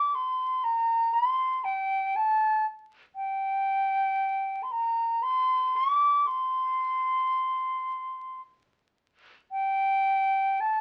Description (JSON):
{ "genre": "celtic folk", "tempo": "53-60 BPM", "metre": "3/4", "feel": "rubato", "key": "G minor", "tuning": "A4 = 435 Hz", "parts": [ { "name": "bright wooden flute", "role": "solo", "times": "0.0-10.8 s", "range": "G5 to D6", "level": "-27 LUFS", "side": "equal", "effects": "none" } ], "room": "moderate studio reverb, RT60 0.5 s", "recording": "very old 78 rpm record, vinyl crackle", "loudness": "-27 LUFS", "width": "mono", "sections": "0.0-9.5 A section; 9.5-10.8 B section", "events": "none", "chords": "none" }